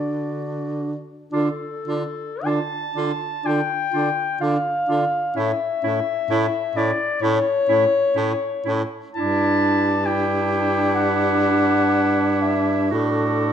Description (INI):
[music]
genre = classical, lyrical piece for single-reed quartet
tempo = 51-68 BPM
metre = 4/4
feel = rubato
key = D minor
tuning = A4 = 442 Hz
[part]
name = warm clarinet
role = melody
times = 0.0-13.5 s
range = A4 to A5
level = -23 LUFS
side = left 4 dB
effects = none
[part]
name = bright clarinet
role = second line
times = 0.0-13.5 s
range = E4 to F#4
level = -27 LUFS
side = right 7 dB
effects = none
[part]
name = mellow tenor saxophone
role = accompaniment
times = 0.0-13.5 s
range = C#4 to D4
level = -25 LUFS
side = equal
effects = none
[part]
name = clear baritone saxophone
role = bass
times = 0.0-13.5 s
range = G2 to D3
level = -25 LUFS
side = right 2 dB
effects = none
[sound]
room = moderate recital hall reverb, RT60 1.5 s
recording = dark, warm production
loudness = -19 LUFS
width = side -8 dB against mid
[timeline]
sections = 0.0-1.3 A section; 1.3-13.5 B section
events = none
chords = 0.0 D; 5.4 A; 9.2 Em7/G; 12.9 D/A